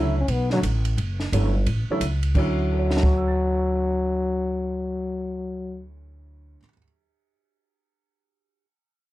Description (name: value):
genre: jazz, small-group swing and bop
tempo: 175 BPM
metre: 4/4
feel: swing 63% on 8ths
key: D major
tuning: A4 = 440 Hz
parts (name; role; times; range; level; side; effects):
- growling trombone; melody; 0.0-5.9 s; F#3 to E4; -25 LUFS; left 2 dB; none
- warm baby grand piano; accompaniment; 0.0-6.8 s; D2 to A6; -28 LUFS; right 2 dB; none
- upright bass; bass; 0.0-6.5 s; F#1 to D2; -25 LUFS; equal; none
- compact cocktail drum kit; drums; 0.3-3.1 s; crash cymbal, hi-hat, kick drum, ride cymbal, snare drum; -27 LUFS; equal; none
room: little or no reverb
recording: close, detailed microphones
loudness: -21 LUFS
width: side -16 dB against mid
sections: 0.0-2.4 A section; 2.4-5.1 B section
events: none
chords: 0.0 Dmaj7